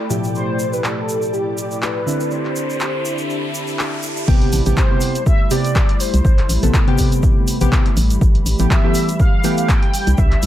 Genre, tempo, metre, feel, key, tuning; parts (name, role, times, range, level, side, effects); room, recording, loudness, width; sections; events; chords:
deep house; 122 BPM; 4/4; swing 55% on 16ths; A minor; A4 = 442 Hz
hollow soft pad; sustained chords; 0.0-10.5 s; E3 to B5; -26 LUFS; right 2 dB; chorus, sidechain pumping
warm analog keys; stabs; 0.0-9.7 s; A2 to A4; -22 LUFS; equal; chorus, sidechain pumping, tape echo
ethereal airy pad; texture; 0.0-4.3 s; A4 to B5; -31 LUFS; equal; ensemble chorus, built-in reverb, sidechain pumping
tube shaker; percussion; 0.1-10.5 s; -30 LUFS; right 2 dB
mellow horn-like synth lead; melody; 0.3-10.5 s; G4 to G5; -25 LUFS; left 1 dB; ensemble chorus, cassette tape, dub echo
riser; sound effects; 1.4-4.3 s; -31 LUFS; left 1 dB
punchy analog drum machine; drums; 0.8-10.5 s; crash cymbal, handclaps, hi-hat; -25 LUFS; equal; low-pass filter on snare, low-pass filter on cymbals, low-pass filter on hats
organ-like FM bass; bass; 4.3-10.5 s; G1 to C2; -16 LUFS; equal; tube saturation, sidechain pumping
electronic kick drum; drums; 4.3-10.3 s; -15 LUFS; equal
digital ambience; -15 LUFS; side -12 dB against mid
0.0-4.3 A section; 4.3-10.5 B section
filter sweep on synth keys 0.0-4.3; riser 1.4-4.3; drop 4.3-10.5
0.1 Fmaj9#11/A; 2.1 Cmaj9; 4.3 Am9; 8.0 Fmaj9#11; 9.9 Cmaj9